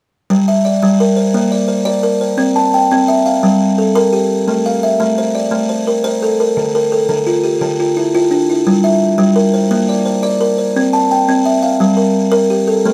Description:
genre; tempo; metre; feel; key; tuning
southern african traditional; 115 BPM (dotted quarters); 12/8; straight; G dorian; A4 = 440 Hz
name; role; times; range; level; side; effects
buzzing kalimba; arpeggios; 0.3-12.9 s; D3 to A5; -14 LUFS; equal; none
room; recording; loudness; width
moderate small room reverb, RT60 0.5 s; none; -14 LUFS; mono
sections
0.3-12.9 A section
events
none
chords
0.3 Gm; 1.3 Bb; 2.4 C; 3.4 Gm; 4.5 Am; 6.6 Dm; 8.7 Gm; 9.7 Bb; 10.7 C; 11.8 Gm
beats
| 0.29 0.81 1.33 1.86 | 2.38 2.90 3.43 3.95 | 4.47 5.00 5.52 6.04 | 6.56 7.09 7.61 8.13 | 8.66 9.18 9.70 10.23 | 10.75 11.27 11.79 12.32 | 12.84

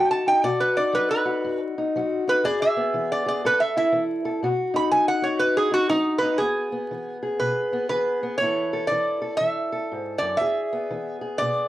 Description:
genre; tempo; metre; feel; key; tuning
acoustic country blues, solo or duo; 121 BPM; 4/4; swing 62% on 8ths; E major; A4 = 440 Hz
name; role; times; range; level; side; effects
metal-body resonator slide guitar; melody; 0.0-11.7 s; D#4 to B5; -22 LUFS; right 1 dB; cassette tape
fingerpicked steel-string acoustic guitar; accompaniment; 0.0-11.7 s; E2 to A4; -26 LUFS; left 2 dB; cassette tape
room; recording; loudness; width
moderate studio reverb, RT60 0.5 s; home recording on cassette, vinyl crackle; -21 LUFS; side -14 dB against mid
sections
0.0-6.4 A section; 6.4-11.7 B section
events
resonator guitar played with a steel bar solo 0.0-6.4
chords
0.0 B; 2.4 E; 3.4 A5; 4.4 B; 6.4 E; 8.4 A; 10.4 E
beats
| 0.45 0.95 1.45 1.94 | 2.44 2.94 3.43 3.93 | 4.43 4.92 5.42 5.92 | 6.42 6.91 7.41 7.91 | 8.41 8.91 9.41 9.90 | 10.40 10.90 11.40

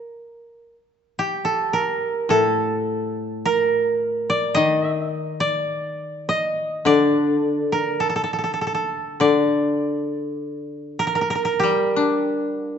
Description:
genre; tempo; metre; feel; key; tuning
japanese traditional, Japanese chamber music; 47-54 BPM; 4/4; rubato; unclear; A4 = 440 Hz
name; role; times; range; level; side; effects
koto; melody; 0.0-12.8 s; G4 to Eb5; -22 LUFS; right 2 dB; none
koto; accompaniment; 2.3-12.8 s; A2 to D4; -22 LUFS; left 3 dB; none
room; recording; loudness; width
moderate scoring stage reverb, RT60 1.8 s; dark, warm production, nothing above 7.9 kHz; -19 LUFS; side -8 dB against mid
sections
0.0-12.8 A section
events
none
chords
none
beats
| 0.04 1.17 2.30 3.44 | 4.57 5.71 6.87 8.02 | 9.21 10.40 11.64

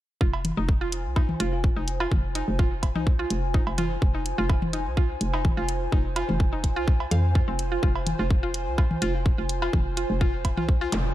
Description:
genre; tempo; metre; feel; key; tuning
minimal techno; 126 BPM; 4/4; swing 53% on 16ths; F minor; A4 = 440 Hz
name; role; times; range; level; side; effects
mallet-like synth pluck; riff; 0.2-10.9 s; C4 to F5; -32 LUFS; right 1 dB; chorus, sidechain pumping, digital delay
hollow knocking FM bass; bass; 0.2-11.1 s; F1 to F2; -28 LUFS; equal; sidechain pumping
electronic kick drum; drums; 0.2-10.8 s; none; -22 LUFS; equal; none
airy breathy pad; texture; 0.7-11.1 s; F4 to Ab5; -33 LUFS; equal; chorus, sidechain pumping
electronic cowbell and toms; percussion; 0.3-10.7 s; none; -31 LUFS; equal; none
electronic hi-hat; drums; 0.4-11.0 s; none; -33 LUFS; right 1 dB; none
bell-like FM electric piano; melody; 1.4-1.6, 9.0-9.2 s; F4; -37 LUFS; right 3 dB; chorus, tremolo, tape echo
zap; sound effects; 10.9-11.1 s; none; -30 LUFS; equal; none
room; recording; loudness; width
light reverb, digital ambience; dark, warm production; -22 LUFS; side -14 dB against mid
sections
0.2-11.1 A section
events
none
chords
0.2 Fm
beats
| 0.21 0.69 1.16 1.64 | 2.12 2.59 3.07 3.54 | 4.02 4.50 4.97 5.45 | 5.92 6.40 6.88 7.35 | 7.83 8.30 8.78 9.26 | 9.73 10.21 10.69

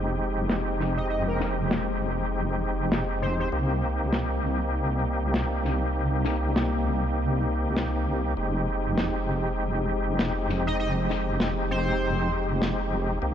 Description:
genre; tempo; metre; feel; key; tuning
glitch hop; 99 BPM; 4/4; swing 58% on 16ths; F minor; A4 = 441 Hz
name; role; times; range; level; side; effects
warbly tape-like pad; sustained chords; 0.0-13.3 s; C3 to G4; -34 LUFS; equal; chorus, built-in reverb, phaser, vintage 12-bit sampler grit
bright tonewheel organ; stabs; 0.0-13.3 s; Ab3 to G4; -29 LUFS; equal; overdrive, chorus vibrato, fast rotary speaker, digital delay
wobble bass; bass; 0.0-13.3 s; F1 to C2; -28 LUFS; equal; chorus, tube saturation
snare drum; drums; 0.5-12.8 s; none; -30 LUFS; left 2 dB; low-pass filter on hats, low-pass filter on snare, low-pass filter on room
sync lead; melody; 1.0-3.5, 10.7-12.3 s; Bb4 to Eb5; -33 LUFS; equal; analog chorus, cassette tape, digital delay
room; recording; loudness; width
light reverb, studio ambience; none; -24 LUFS; side -9 dB against mid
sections
0.0-13.3 A section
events
none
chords
0.0 Fm9; 3.5 Cm7; 8.4 Fm9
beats
0.49 | 1.10 1.71 2.31 2.92 | 3.52 4.13 4.74 5.34 | 5.95 6.55 7.16 7.77 | 8.37 8.98 9.59 10.19 | 10.80 11.40 12.01 12.62 | 13.22

